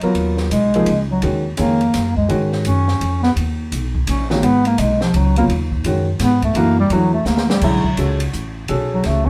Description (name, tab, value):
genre	modal jazz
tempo	169 BPM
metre	3/4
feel	swing 63% on 8ths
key	G# dorian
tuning	A4 = 440 Hz
part	mellow bass clarinet	second line	0.0-9.3 s	E#3 to C#4	-20 LUFS	equal	none
part	dark baby grand piano	accompaniment	0.0-9.2 s	C#3 to A#4	-23 LUFS	equal	none
part	upright bass	bass	0.0-9.3 s	G#1 to G#2	-22 LUFS	equal	none
part	open jazz drum kit	drums	0.0-9.3 s	crash cymbal, hi-hat, kick drum, ride cymbal, snare drum	-28 LUFS	equal	none
room	moderate studio reverb, RT60 0.8 s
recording	band playing live in one room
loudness	-17 LUFS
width	mono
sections	0.0-7.6 A section; 7.6-9.3 A section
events	bass clarinet solo 0.0-9.3; drum fill 7.3-7.6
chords	0.0 G#m9; 6.6 Dadd9; 7.6 B7sus2